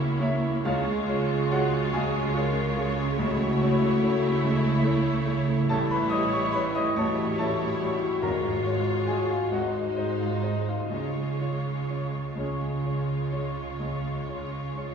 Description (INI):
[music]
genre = classical, romantic movement for piano and orchestra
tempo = 41-48 BPM (dotted quarters)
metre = 12/8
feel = rubato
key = Db major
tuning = A4 = 441 Hz
[part]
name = clear grand piano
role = melody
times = 0.0-14.9 s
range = Ab1 to Eb6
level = -29 LUFS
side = equal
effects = none
[part]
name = rich symphonic violin section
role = melody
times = 0.0-14.9 s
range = C5 to Db5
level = -40 LUFS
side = left 5 dB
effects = none
[part]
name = bright large flute ensemble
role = second line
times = 0.0-14.9 s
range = C6 to Db6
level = -39 LUFS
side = right 1 dB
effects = none
[part]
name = rich symphonic violin section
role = second line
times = 0.0-14.9 s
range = Eb4 to F4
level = -37 LUFS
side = left 2 dB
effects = none
[part]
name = warm clarinet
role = second line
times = 0.0-14.9 s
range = Eb4 to F4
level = -38 LUFS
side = right 2 dB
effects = none
[part]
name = rich studio viola section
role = accompaniment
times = 0.0-14.9 s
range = G3 to Bb3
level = -33 LUFS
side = right 1 dB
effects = none
[part]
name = mellow French horn section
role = sustained chords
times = 0.0-14.9 s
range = Fb4 to Bb4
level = -32 LUFS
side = left 3 dB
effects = none
[part]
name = rich symphonic cello section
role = bass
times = 0.0-14.9 s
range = Ab2 to Db3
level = -32 LUFS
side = right 4 dB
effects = none
[part]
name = rich symphonic double bass section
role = bass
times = 0.0-14.9 s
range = Ab1 to Db2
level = -33 LUFS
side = right 2 dB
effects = none
[part]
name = timpani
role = percussion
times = 3.2-9.5 s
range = Ab2 to C#3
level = -38 LUFS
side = right 1 dB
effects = none
[sound]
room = wet scoring stage reverb, RT60 1.6 s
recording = heard from further back in the room, small room ambience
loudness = -24 LUFS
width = side -6 dB against mid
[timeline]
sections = 0.0-14.9 A section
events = none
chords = 0.0 Dbdim7; 0.7 Db; 3.2 A/C#; 5.7 A7; 8.2 Db/Ab; 10.9 Db